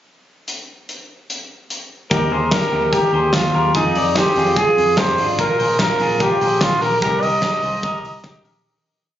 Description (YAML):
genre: jangly indie pop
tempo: 147 BPM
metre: 4/4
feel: straight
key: Eb major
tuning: A4 = 443 Hz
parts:
  - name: big rock drum kit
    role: drums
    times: 0.5-8.5 s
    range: hi-hat, kick drum, snare drum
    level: -22 LUFS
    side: equal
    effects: none
  - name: growling trumpet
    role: melody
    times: 2.1-8.4 s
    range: Eb4 to Eb5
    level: -18 LUFS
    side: equal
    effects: none
  - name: electric guitar through a small old amp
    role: arpeggios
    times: 2.1-8.7 s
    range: D4 to D5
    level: -21 LUFS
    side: left 1 dB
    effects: spring reverb
  - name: vintage muted picked electric bass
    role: bass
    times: 2.1-8.6 s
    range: Ab1 to F2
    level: -25 LUFS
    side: right 1 dB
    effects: none
room: moderate club reverb, RT60 0.5 s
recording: recorded on a phone in the room, club reverb, compression, nothing above 7.5 kHz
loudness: -15 LUFS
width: side -11 dB against mid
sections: 0.5-2.1 pickup bar; 2.1-8.6 verse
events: fade-out 7.0-8.6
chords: 0.5 N.C.; 2.1 Eb; 3.7 Fm7; 5.4 Bb5; 7.0 Cm7